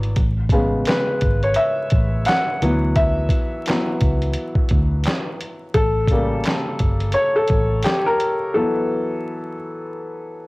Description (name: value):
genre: lo-fi hip hop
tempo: 86 BPM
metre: 4/4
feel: swing 63% on 16ths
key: A major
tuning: A4 = 437 Hz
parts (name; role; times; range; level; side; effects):
- felt-muted upright piano; accompaniment; 0.0-10.5 s; C#3 to F#5; -20 LUFS; left 1 dB; low-pass filter
- vintage muted fingered electric bass; bass; 0.0-7.8 s; G1 to D2; -21 LUFS; equal; transformer saturation
- dusty soul sampler-style drum kit; drums; 0.0-8.4 s; handclaps, hi-hat, kick drum, snare drum; -21 LUFS; equal; cassette tape
room: little or no reverb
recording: home recording on cassette, vinyl crackle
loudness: -17 LUFS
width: side -23 dB against mid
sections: 0.0-10.5 A section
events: felt piano solo 0.0-10.5; break 8.5-10.5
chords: 0.2 Amaj7; 2.6 D69; 5.8 A7b9; 8.5 Esus24